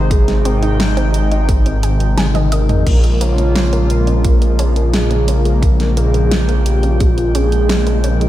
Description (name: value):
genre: synthwave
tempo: 87 BPM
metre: 4/4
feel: straight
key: Bb dorian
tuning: A4 = 437 Hz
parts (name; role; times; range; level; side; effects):
- soft octave-layered synth lead; melody; 0.0-8.3 s; F4 to Db5; -23 LUFS; equal; chorus, tremolo, diffuse ambient delay
- chorused pulse-width pad; sustained chords; 0.0-8.3 s; C3 to G5; -20 LUFS; left 1 dB; wide subtle chorus, sidechain pumping
- analog pluck; arpeggios; 0.0-8.3 s; Ab3 to Eb5; -26 LUFS; right 2 dB; chorus, tape echo
- wide detuned saw bass; bass; 0.0-8.3 s; Ab1 to Bb1; -15 LUFS; equal; chorus
- electronic kick drum; drums; 0.1-7.1 s; none; -14 LUFS; equal; studio reverb
- pop drum kit; drums; 0.1-8.3 s; crash cymbal, hi-hat, snare drum, toms; -22 LUFS; equal; studio reverb
room: light reverb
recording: none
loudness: -12 LUFS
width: side -14 dB against mid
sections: 0.0-8.3 A section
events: drum fill 2.2-2.9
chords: 0.0 Ab; 2.9 Bbm7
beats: | 0.11 0.80 1.49 2.18 | 2.87 3.56 4.25 4.94 | 5.62 6.32 7.00 7.69